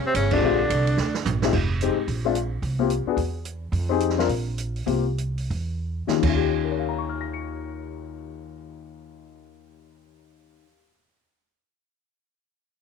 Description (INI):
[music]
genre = jazz, small-group swing and bop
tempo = 153-219 BPM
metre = 4/4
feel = swing 61% on 8ths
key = Eb mixolydian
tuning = A4 = 440 Hz
[part]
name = upright bass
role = bass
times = 0.0-10.6 s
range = F1 to F2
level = -27 LUFS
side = right 1 dB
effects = none
[part]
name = warm tenor saxophone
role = melody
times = 0.1-1.3 s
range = C4 to D4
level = -25 LUFS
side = left 1 dB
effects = none
[part]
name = breathy trombone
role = second line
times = 0.1-1.3 s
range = C3 to D3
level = -29 LUFS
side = right 11 dB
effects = none
[part]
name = open jazz drum kit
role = drums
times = 0.1-6.3 s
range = crash cymbal, hi-hat, kick drum, ride cymbal, snare drum, toms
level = -30 LUFS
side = right 8 dB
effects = none
[part]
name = dark baby grand piano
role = accompaniment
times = 0.3-11.2 s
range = Eb2 to Db7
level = -25 LUFS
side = left 11 dB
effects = none
[sound]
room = light reverb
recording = 1960s-style stereo with parts hard left and right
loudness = -22 LUFS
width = side -6 dB against mid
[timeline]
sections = 0.0-1.5 A section; 1.5-6.2 B section; 6.2-9.4 C section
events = band accent 0.3; drum fill 1.0-1.5, 5.9-6.2; slowing down 3.7-6.2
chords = 0.4 Bb13; 1.5 Fm9; 2.1 Bb7; 2.6 C7sus4; 3.2 N.C.; 3.7 Fm9; 4.3 N.C.; 4.9 C7sus4; 5.5 Edim7; 6.2 Eb9